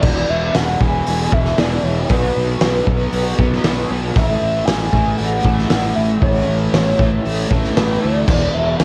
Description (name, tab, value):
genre	rock, shoegaze and dream pop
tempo	116 BPM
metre	4/4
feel	straight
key	A major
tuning	A4 = 438 Hz
part	pure sine lead	melody	0.0-8.8 s	B4 to G#5	-24 LUFS	equal	chorus, tape echo
part	fuzz guitar	riff	0.0-8.8 s	E2 to B3	-23 LUFS	equal	distortion, analog chorus, cassette tape
part	fuzz fingered electric bass	bass	0.0-8.8 s	E1 to D2	-24 LUFS	equal	overdrive
part	loose indie drum kit	drums	0.0-8.8 s	crash cymbal, hi-hat, kick drum, snare drum	-21 LUFS	equal	none
room	small room ambience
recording	home recording on cassette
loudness	-17 LUFS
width	mono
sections	0.0-8.8 A section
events	none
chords	0.0 E; 2.1 B5; 4.2 Amaj7; 8.3 E5